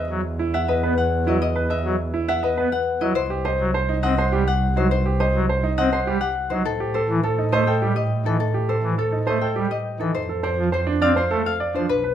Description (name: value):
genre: classical, minimalist pattern music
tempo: 103 BPM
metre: 3/4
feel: straight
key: E harmonic minor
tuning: A4 = 441 Hz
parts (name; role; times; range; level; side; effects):
- concert harp; melody; 0.0-12.1 s; A4 to C6; -25 LUFS; left 7 dB; none
- clear baby grand piano; arpeggios; 0.0-12.1 s; D4 to E5; -24 LUFS; right 5 dB; none
- dark double bass; bass; 0.0-12.1 s; B1 to A2; -24 LUFS; right 2 dB; none
- pipe organ, foundations; accompaniment; 0.1-11.9 s; E3 to C4; -26 LUFS; equal; none
room: light reverb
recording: none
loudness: -19 LUFS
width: side -10 dB against mid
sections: 0.0-12.1 A section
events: none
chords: 0.0 Esus2; 3.2 Cm; 6.7 Am7; 10.2 F